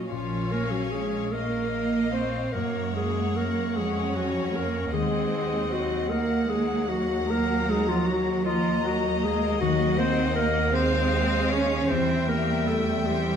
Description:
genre	classical, slow romantic movement for symphony orchestra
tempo	47-53 BPM (dotted quarters)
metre	12/8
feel	rubato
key	Bb minor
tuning	A4 = 440 Hz
part	warm chamber violin section	melody	0.0-13.4 s	Eb5 to Bb5	-36 LUFS	left 4 dB	none
part	mellow clarinet	second line	0.0-13.4 s	F4 to Db5	-29 LUFS	left 2 dB	none
part	rich chamber violin section	second line	0.0-13.4 s	Db5 to Gb5	-34 LUFS	left 6 dB	none
part	warm studio viola section	accompaniment	0.0-13.4 s	Gb3 to Db4	-32 LUFS	right 2 dB	none
part	warm chamber cello section	bass	0.0-13.4 s	F3 to Db4	-29 LUFS	right 3 dB	none
part	concert harp	arpeggios	0.1-13.4 s	Gb2 to Gb5	-33 LUFS	left 7 dB	none
part	clear chamber double bass section	bass	0.1-13.4 s	Bb1 to Gb2	-31 LUFS	right 4 dB	none
room	wet recital hall reverb, RT60 1.4 s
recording	none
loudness	-23 LUFS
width	side -7 dB against mid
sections	0.1-13.4 A section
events	none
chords	0.1 Bbm; 2.5 Gb; 4.9 Ebm; 9.6 Cdim/Eb; 11.9 C7/E

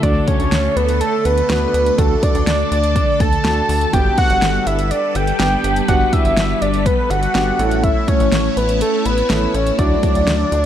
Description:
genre	synth-pop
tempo	123 BPM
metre	4/4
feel	straight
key	D major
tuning	A4 = 440 Hz
part	fat analog lead	melody	0.0-10.7 s	A4 to A5	-18 LUFS	equal	tape echo
part	warm concert grand piano	accompaniment	0.0-10.6 s	A3 to B4	-23 LUFS	right 4 dB	none
part	phased string machine	sustained chords	0.0-10.7 s	D3 to B4	-23 LUFS	left 1 dB	ensemble chorus, phaser
part	rubbery square bass	bass	0.0-10.7 s	G1 to D2	-20 LUFS	equal	none
part	pop drum kit	drums	0.0-10.6 s	hi-hat, kick drum, snare drum	-19 LUFS	equal	none
room	light reverb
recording	dark, warm production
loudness	-14 LUFS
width	side -10 dB against mid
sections	0.0-10.7 A section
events	none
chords	0.0 D; 3.9 Gmaj7; 7.6 A; 9.8 Dadd9

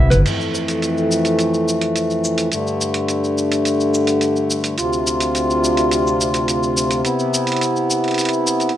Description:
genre	folktronica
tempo	106 BPM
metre	4/4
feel	straight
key	F lydian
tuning	A4 = 438 Hz
part	hand-pumped harmonium	sustained chords	0.0-8.7 s	D2 to F4	-17 LUFS	equal	none
part	lo-fi sampler-style drum kit	drums	0.1-8.8 s	crash cymbal, hi-hat, shaker	-23 LUFS	right 1 dB	none
room	moderate plate reverb, RT60 1.2 s, small room reverb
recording	dark, warm production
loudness	-16 LUFS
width	side -11 dB against mid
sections	0.3-8.8 A section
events	none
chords	0.3 Fmaj7; 2.5 Gsus2; 4.8 Dm7; 7.0 Cmaj7

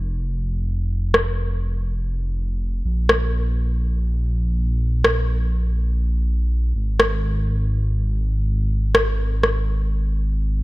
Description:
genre	progressive house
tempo	free time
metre	none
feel	none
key	unclear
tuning	A4 = 440 Hz
part	dark detuned saw bass	bass	0.0-10.6 s	F1 to Bb1	-20 LUFS	equal	none
part	electronic rim click	drums	1.1-9.5 s	none	-19 LUFS	equal	low-pass filter on snare
room	digital ambience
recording	none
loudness	-19 LUFS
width	side -20 dB against mid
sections	0.0-10.6 A section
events	none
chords	none

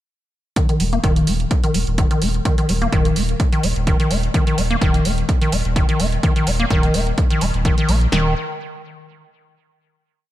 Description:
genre	acid house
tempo	127 BPM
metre	4/4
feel	swing 54% on 16ths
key	unclear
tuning	A4 = 440 Hz
part	acid bass, square	riff	0.6-8.3 s	Eb3 to Bb3	-20 LUFS	left 1 dB	analog chorus, sidechain pumping, ping-pong delay
part	electronic hi-hat	drums	0.6-8.1 s	none	-29 LUFS	right 5 dB	none
part	punchy analog drum machine	drums	0.6-8.2 s	kick drum, snare drum	-18 LUFS	equal	none
part	saturated sub bass	bass	0.8-8.3 s	Eb1 to Bb1	-21 LUFS	equal	tube saturation, sidechain pumping
room	light reverb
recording	none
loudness	-16 LUFS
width	side -14 dB against mid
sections	0.6-8.1 groove; 8.1-10.0 final note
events	filter sweep on acid bass 0.6-8.1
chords	0.6 Eb5; 8.1 N.C.

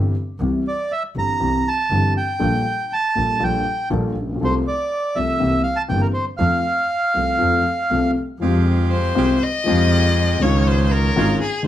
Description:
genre	tango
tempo	120 BPM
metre	4/4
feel	rubato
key	F major, F minor from 8.4 s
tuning	A4 = 438 Hz
part	dark upright piano	accompaniment	0.0-11.7 s	G1 to A4	-21 LUFS	left 2 dB	none
part	clear double bass	bass	0.0-11.4 s	G1 to F2	-21 LUFS	right 1 dB	none
part	bandoneon	melody	0.7-8.1 s	Bb4 to Bb5	-20 LUFS	right 2 dB	plate reverb
part	bandoneon	stabs	8.4-11.4 s	Ab3 to G4	-28 LUFS	right 6 dB	none
part	rich violin	second line	8.9-11.7 s	Ab4 to Eb5	-22 LUFS	left 4 dB	none
room	moderate studio ambience, RT60 0.5 s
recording	none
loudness	-17 LUFS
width	side -12 dB against mid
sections	0.0-8.4 A section; 8.4-11.7 B section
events	violin solo 8.4-11.7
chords	0.0 C; 2.4 Gmadd9/Bb; 4.4 F/C; 5.4 C7; 6.4 F; 8.4 Fmadd9; 10.4 Dbadd9

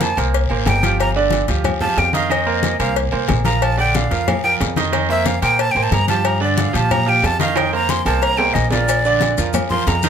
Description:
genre	latin, salsa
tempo	182 BPM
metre	4/4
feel	straight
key	unclear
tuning	A4 = 439 Hz
part	breathy bright jazz flute	melody	0.0-10.1 s	D5 to C6	-19 LUFS	equal	none
part	bright grand piano	accompaniment	0.0-10.1 s	D3 to Eb5	-21 LUFS	right 7 dB	none
part	upright bass	bass	0.0-10.1 s	G1 to Bb2	-21 LUFS	left 1 dB	none
part	congas	percussion	0.0-10.1 s	none	-24 LUFS	left 4 dB	none
part	cowbell	percussion	0.0-10.1 s	none	-26 LUFS	left 9 dB	none
part	guiro	percussion	0.0-10.1 s	none	-30 LUFS	left 8 dB	none
part	timbales and agogo bells	percussion	0.0-10.0 s	none	-26 LUFS	left 1 dB	none
part	maracas	percussion	8.9-10.1 s	none	-30 LUFS	left 11 dB	none
room	light reverb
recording	none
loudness	-15 LUFS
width	side -8 dB against mid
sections	0.0-10.1 A section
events	flute solo 0.0-10.1; drum fill 7.6-8.9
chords	0.0 Fsus4; 1.0 G5; 2.3 F7sus4; 3.6 Bb; 4.9 F7sus4; 6.2 Gm7; 7.6 F7sus4; 8.9 Bb

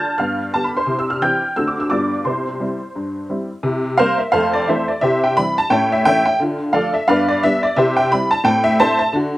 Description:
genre	jazz, stride piano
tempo	175 BPM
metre	4/4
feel	swing 61% on 8ths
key	C major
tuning	A4 = 440 Hz
part	honky-tonk upright piano	solo	0.0-9.4 s	F2 to A6	-15 LUFS	equal	none
room	little or no reverb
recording	recorded outdoors, with no room sound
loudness	-15 LUFS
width	side -16 dB against mid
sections	0.0-3.6 A section; 3.6-9.4 B section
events	none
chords	0.2 G7; 0.9 C; 1.6 D7; 1.9 G7; 2.3 C; 3.6 C7; 4.3 Fmaj7; 5.0 C; 5.7 A; 6.4 Dm; 7.1 G; 7.8 C; 8.4 Am

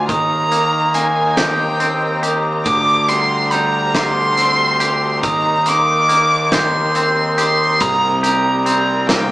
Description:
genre	post-rock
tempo	47 BPM (dotted quarters)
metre	6/8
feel	straight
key	C minor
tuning	A4 = 440 Hz
part	dark violin	melody	0.0-9.3 s	G5 to D6	-16 LUFS	right 1 dB	none
part	rich studio string section	sustained chords	0.0-9.3 s	C3 to Bb5	-25 LUFS	equal	none
part	twangy electric guitar	arpeggios	0.0-9.3 s	C3 to G4	-22 LUFS	left 1 dB	none
part	fuzz picked electric bass	bass	0.0-9.3 s	C2 to Eb2	-21 LUFS	equal	overdrive
part	glockenspiel with hard plastic mallets	arpeggios	0.1-9.3 s	C6 to G6	-22 LUFS	equal	none
part	loose indie drum kit	drums	0.1-9.3 s	hi-hat, kick drum, snare drum	-22 LUFS	equal	none
room	wet large studio reverb, RT60 1.1 s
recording	band playing live in one room, small speaker sound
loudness	-13 LUFS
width	side -18 dB against mid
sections	0.0-7.8 A section; 7.8-9.3 B section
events	none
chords	0.1 Cm7/Eb; 2.7 Gsus4/D; 5.2 Cm7/Eb; 7.8 Cm7

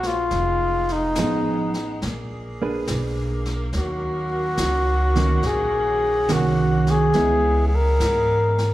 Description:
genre	jazz ballad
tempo	70 BPM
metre	4/4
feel	swing 68% on 8ths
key	unclear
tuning	A4 = 440 Hz
part	trumpet with bucket mute	melody	0.0-8.7 s	Eb4 to Bb4	-21 LUFS	left 1 dB	none
part	bright saxophone section	sustained chords	0.0-8.7 s	Eb3 to C5	-33 LUFS	right 1 dB	none
part	upright bass	bass	0.0-8.7 s	F1 to Ab2	-24 LUFS	equal	none
part	jazz brush drum kit	drums	0.0-8.7 s	brushed snare drum, hi-hat, snare drum	-33 LUFS	left 1 dB	none
part	hollow-body jazz guitar	accompaniment	1.2-7.7 s	Eb3 to Cb5	-24 LUFS	right 3 dB	none
room	wet recital hall reverb, RT60 1.7 s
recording	recorded in a church or concert hall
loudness	-19 LUFS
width	side -15 dB against mid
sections	0.0-8.7 A section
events	none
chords	0.3 Fm7b5; 2.0 Bb7b9; 3.7 Ebm7; 7.1 Dbm7

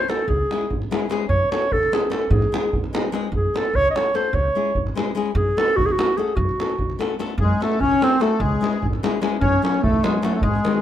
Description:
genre	balkan folk, Balkan wedding band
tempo	296 BPM (eighths)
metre	5/8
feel	straight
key	F# dorian sharp4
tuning	A4 = 441 Hz
part	mellow clarinet	melody	0.0-10.8 s	G#3 to D#5	-20 LUFS	equal	none
part	nylon-string guitar	accompaniment	0.0-10.8 s	D#3 to A4	-26 LUFS	left 7 dB	none
part	davul	percussion	0.1-10.8 s	none	-26 LUFS	right 2 dB	none
part	upright bass	bass	0.3-10.6 s	G#1 to G#2	-24 LUFS	equal	none
part	accordion	second line	7.4-10.8 s	G#4 to C#5	-27 LUFS	left 3 dB	light tremolo tuning, analog delay
room	moderate studio reverb, RT60 0.6 s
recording	rough home demo mix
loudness	-18 LUFS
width	side -11 dB against mid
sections	0.0-7.4 A section; 7.4-10.8 A section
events	none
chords	0.3 C#m; 1.3 F#m; 2.3 G#; 3.3 F#m; 4.3 C#m; 5.4 F#m; 8.4 C#m; 9.4 F#m

